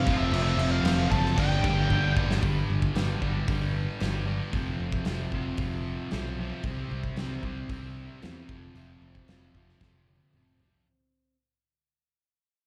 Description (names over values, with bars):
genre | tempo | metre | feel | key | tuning
hard rock | 114 BPM | 4/4 | straight | unclear | A4 = 440 Hz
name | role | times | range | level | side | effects
biting lead guitar | melody | 0.0-2.1 s | E5 to A5 | -34 LUFS | equal | overdrive, slapback echo
overdriven electric guitar | riff | 0.0-11.4 s | F2 to C4 | -36 LUFS | equal | none
sludgy distorted guitar | riff | 0.0-2.4 s | G2 to F4 | -33 LUFS | equal | overdrive
modern bright picked electric bass | bass | 0.1-10.7 s | F1 to E2 | -32 LUFS | equal | none
big rock drum kit | drums | 0.1-10.9 s | crash cymbal, hi-hat, kick drum, snare drum, toms | -34 LUFS | equal | none
room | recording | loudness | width
little or no reverb | live gig heard through the venue's PA, club reverb | -28 LUFS | mono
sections
0.0-2.4 A section; 2.4-10.9 B section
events
drum fill 1.9-2.4, 9.8-10.9; fade-out 2.4-10.9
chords
0.1 F; 1.4 Gm; 2.4 G5; 4.5 F5; 6.6 C5; 8.5 F5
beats
| 0.33 0.85 1.38 1.90 | 2.43 2.96 3.48 4.01 | 4.54 5.07 5.59 6.12 | 6.65 7.18 7.70 8.23 | 8.76 9.29 9.82 10.35